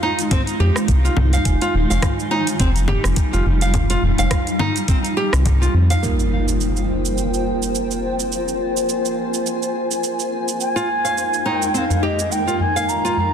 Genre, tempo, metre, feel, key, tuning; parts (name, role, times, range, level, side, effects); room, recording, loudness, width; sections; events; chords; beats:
organic downtempo; 105 BPM; 4/4; swing 57% on 16ths; F minor; A4 = 440 Hz
granular cloud pad; sustained chords; 0.0-13.3 s; F2 to Ab5; -23 LUFS; left 1 dB; built-in reverb, sidechain pumping, shimmer reverb
nylon-string guitar; arpeggios; 0.0-6.0, 10.8-13.2 s; C4 to F5; -24 LUFS; right 1 dB; tape echo, shimmer reverb
tabla; percussion; 0.0-6.0, 11.0-13.3 s; -27 LUFS; left 1 dB
bronze singing bowl; texture; 0.0-13.3 s; Bb3 to Ab5; -30 LUFS; right 5 dB; shimmer reverb
afro-pop drum kit; drums; 0.2-13.2 s; congas, hi-hat, rim click, shaker; -25 LUFS; equal; soft clipping on snare
electronic kick drum; drums; 0.3-5.6 s; -19 LUFS; equal
round analog bass; bass; 0.6-5.9 s; Eb1 to F2; -17 LUFS; equal; tube saturation, sidechain pumping
impact; sound effects; 6.0-8.3 s; -24 LUFS; equal
bansuri; melody; 10.6-13.3 s; Eb5 to Bb5; -20 LUFS; equal; ping-pong delay, shimmer reverb
moderate echo chamber reverb, RT60 2.2 s; dense, heavily limited modern master; -16 LUFS; side -8 dB against mid
0.0-6.0 A section; 6.0-13.3 B section
impact 6.0-8.3
0.0 Fm7; 6.0 Fm; 10.6 Absus2/F
0.31 0.88 | 1.46 2.03 2.60 3.17 | 3.74 4.31 4.88 5.46 | 6.03 6.60 7.17 7.74 | 8.31 8.88 9.46 10.03 | 10.60 11.17 11.74 12.31 | 12.88